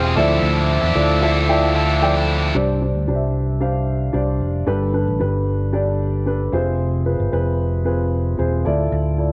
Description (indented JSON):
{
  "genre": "pop",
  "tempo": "113 BPM",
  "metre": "4/4",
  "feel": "straight",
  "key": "C major",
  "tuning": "A4 = 437 Hz",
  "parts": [
    { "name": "dark upright piano", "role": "accompaniment", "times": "0.0-9.3 s", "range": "G2 to G5", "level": "-23 LUFS", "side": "equal", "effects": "none" },
    { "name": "mellow accordion", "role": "sustained chords", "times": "0.0-2.5 s", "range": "F3 to D6", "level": "-28 LUFS", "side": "equal", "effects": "none" },
    { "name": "overdriven electric guitar", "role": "riff", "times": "0.0-2.6 s", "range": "D3 to A4", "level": "-24 LUFS", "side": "equal", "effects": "none" },
    { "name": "fingered electric bass", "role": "bass", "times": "0.0-9.3 s", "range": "E1 to E2", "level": "-22 LUFS", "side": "equal", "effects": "none" }
  ],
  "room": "moderate echo chamber reverb, RT60 1.7 s, studio reverb",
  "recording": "none",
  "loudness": "-19 LUFS",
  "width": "mono",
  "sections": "0.0-2.5 A section; 2.5-9.3 B section",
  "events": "none",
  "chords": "0.2 Dmadd9; 2.5 Csus2; 4.7 Gadd9; 6.5 Fm; 8.7 Dmadd9"
}